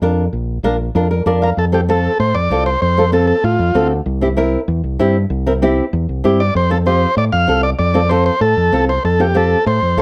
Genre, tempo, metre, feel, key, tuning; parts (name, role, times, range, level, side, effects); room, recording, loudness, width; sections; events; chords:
latin, cumbia; 193 BPM; 4/4; straight; F major; A4 = 440 Hz
nylon-string guitar; accompaniment; 0.0-10.0 s; C4 to F5; -19 LUFS; equal
fingered electric bass; bass; 0.0-10.0 s; Bb1 to A2; -19 LUFS; equal
combo organ; melody; 1.4-3.9, 6.4-10.0 s; F4 to F5; -19 LUFS; equal
light reverb; -15 LUFS; mono
0.0-1.6 A section; 1.6-10.0 B section
nylon-string guitar fill 1.0-1.6
0.0 Bb; 1.6 F; 4.1 C; 6.5 F